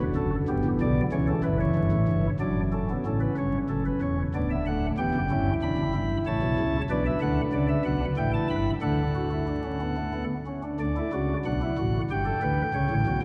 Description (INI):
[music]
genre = classical, baroque-style 4-part fugue for pipe organ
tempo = 93 BPM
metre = 3/4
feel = straight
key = D major from 6.9 s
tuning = A4 = 440 Hz
[part]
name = pipe organ, flutes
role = solo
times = 0.0-13.2 s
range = D1 to B5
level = -26 LUFS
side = equal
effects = none
[sound]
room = wet cathedral reverb, RT60 4.6 s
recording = vinyl crackle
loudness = -27 LUFS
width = mono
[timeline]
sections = 0.0-3.1 A section; 3.1-10.8 B section; 10.8-13.2 C section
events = none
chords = 0.5 G; 1.1 A7; 2.4 D/F#; 3.1 F#m; 4.3 Bm/D; 5.0 Em; 6.3 A; 6.9 Bm; 8.2 A5; 8.8 D; 12.1 G; 12.7 A7